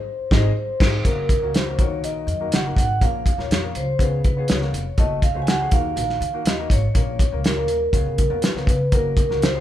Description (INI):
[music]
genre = uptempo 1960s-style soul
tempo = 122 BPM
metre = 4/4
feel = straight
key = Db major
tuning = A4 = 441 Hz
[part]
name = vibraphone with soft mallets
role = melody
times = 0.0-9.5 s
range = Bb4 to Ab5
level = -25 LUFS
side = equal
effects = none
[part]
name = clear baby grand piano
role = accompaniment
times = 0.3-9.6 s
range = Bb2 to Eb5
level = -31 LUFS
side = left 6 dB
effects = none
[part]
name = upright bass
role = bass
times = 0.3-9.6 s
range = F1 to Eb3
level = -25 LUFS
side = equal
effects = none
[part]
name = cloth-damped thuddy drum kit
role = drums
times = 0.3-9.5 s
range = crash cymbal, hi-hat, kick drum, snare drum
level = -20 LUFS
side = equal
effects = none
[sound]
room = light reverb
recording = band playing live in one room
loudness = -18 LUFS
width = side -12 dB against mid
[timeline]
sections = 0.0-1.0 A section; 1.0-9.6 B section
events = band accent 0.0-1.0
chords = 0.0 Ab; 1.0 Gb; 1.8 Ebm; 3.0 Bbm; 4.0 Db7; 5.0 Gbm; 5.7 Ebm; 7.0 Bbm; 7.9 Db7; 8.9 Gb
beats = 0.07 0.56 | 1.05 1.54 2.03 2.52 | 3.01 3.51 4.00 4.49 | 4.98 5.47 5.97 6.46 | 6.95 7.45 7.94 8.43 | 8.92 9.42